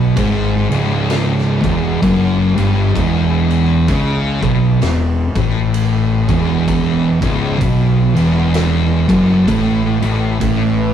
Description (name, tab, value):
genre	stoner and doom metal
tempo	64 BPM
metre	4/4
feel	swing 58% on 8ths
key	unclear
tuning	A4 = 440 Hz
part	thick fuzz guitar	riff	0.0-10.9 s	C#2 to C#3	-17 LUFS	left 3 dB	distortion
part	thick fuzz guitar	riff	0.0-10.9 s	C#2 to C#3	-17 LUFS	right 5 dB	distortion
part	fuzz fingered electric bass	bass	0.0-10.9 s	C#1 to C#2	-19 LUFS	left 1 dB	overdrive
part	oversized low-tuned drum kit	drums	0.2-10.7 s	kick drum, ride cymbal, snare drum	-23 LUFS	equal	none
part	organ-like drone	sustained chords	10.6-10.9 s	A3 to E5	-23 LUFS	left 2 dB	ensemble chorus, built-in reverb
room	moderate stone room reverb, RT60 0.9 s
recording	rough rehearsal-room recording, warm saturation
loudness	-12 LUFS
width	side -9 dB against mid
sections	0.0-10.9 A section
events	none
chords	0.0 C#m; 3.0 E5; 10.4 A5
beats	0.18 1.10 2.03 | 2.96 3.89 4.82 5.75 | 6.68 7.62 8.55 9.48 | 10.42